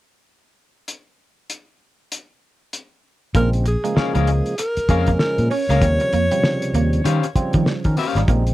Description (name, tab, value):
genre	funk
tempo	97 BPM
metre	4/4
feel	swing 60% on 16ths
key	Bb dorian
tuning	A4 = 440 Hz
part	cloth-damped thuddy drum kit	drums	0.9-8.5 s	hi-hat, kick drum, snare drum	-22 LUFS	equal	none
part	percussive tonewheel organ	stabs	3.3-8.5 s	C3 to Bb4	-25 LUFS	right 2 dB	overdrive
part	vintage muted fingered electric bass	bass	3.3-8.5 s	Ab1 to Eb3	-19 LUFS	equal	none
part	breathy alto saxophone	melody	3.4-7.3 s	Ab4 to Db5	-23 LUFS	equal	tape echo
part	electric guitar at the edge of break-up	riff	3.4-8.4 s	F3 to Db4	-26 LUFS	right 8 dB	wide subtle chorus
part	electric guitar at the edge of break-up	accompaniment	4.0-8.2 s	Db4 to F5	-23 LUFS	left 7 dB	none
room	little or no reverb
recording	dry, close 1970s-style studio recording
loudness	-16 LUFS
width	side -16 dB against mid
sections	0.9-3.3 A section; 3.3-8.5 B section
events	none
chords	0.9 N.C.; 3.3 Bbm7; 5.8 Eb13